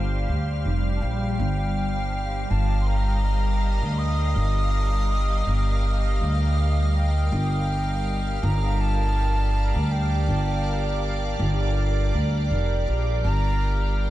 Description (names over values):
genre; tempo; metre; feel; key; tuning
ambient dub; 81 BPM; 4/4; swing 55% on 16ths; unclear; A4 = 440 Hz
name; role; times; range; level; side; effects
soft additive organ-like pad; sustained chords; 0.0-14.1 s; G3 to F5; -29 LUFS; equal; ensemble chorus, built-in reverb
upright bass; bass; 0.0-14.1 s; F1 to D2; -22 LUFS; equal; none
wooden flute; melody; 1.0-13.9 s; G5 to Eb6; -32 LUFS; right 1 dB; dub echo
room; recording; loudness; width
light reverb, studio reverb; none; -21 LUFS; side -15 dB against mid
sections
0.0-13.2 A section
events
none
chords
0.0 Gm7; 1.4 Ebadd9/G; 13.2 Gm7